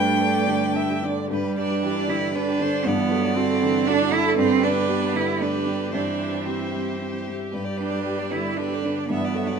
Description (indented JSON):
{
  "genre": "neoclassical piano and strings",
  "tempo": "116 BPM",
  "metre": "3/4",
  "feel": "uneven beats, rubato",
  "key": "G major",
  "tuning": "A4 = 440 Hz",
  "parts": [
    { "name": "clear violin", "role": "melody", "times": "0.0-9.6 s", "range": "A4 to G5", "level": "-30 LUFS", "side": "left 2 dB", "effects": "none" },
    { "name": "rich cello", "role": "second line", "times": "0.0-9.6 s", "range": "A3 to E4", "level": "-24 LUFS", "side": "right 7 dB", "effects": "none" },
    { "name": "dark concert grand piano", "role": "accompaniment", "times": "0.0-9.6 s", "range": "G2 to C5", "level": "-27 LUFS", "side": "left 2 dB", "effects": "none" },
    { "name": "warm viola", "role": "accompaniment", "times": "0.0-9.6 s", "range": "D3 to E5", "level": "-33 LUFS", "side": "right 5 dB", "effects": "none" },
    { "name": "dark chamber string section", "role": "sustained chords", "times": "0.0-9.6 s", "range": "A3 to E5", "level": "-31 LUFS", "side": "right 2 dB", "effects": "none" },
    { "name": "concert harp", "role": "arpeggios", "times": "0.0-9.6 s", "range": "C4 to G5", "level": "-33 LUFS", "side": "right 4 dB", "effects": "none" }
  ],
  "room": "light reverb",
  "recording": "minimal, uncompressed stereo recording",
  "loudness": "-21 LUFS",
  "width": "side -6 dB against mid",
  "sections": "0.0-1.3 A section; 1.3-9.6 A section",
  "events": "none",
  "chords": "0.0 Gadd9; 1.3 G; 2.9 Dadd9/G; 4.4 G; 5.9 C/G; 7.5 G; 9.1 Dadd9/G"
}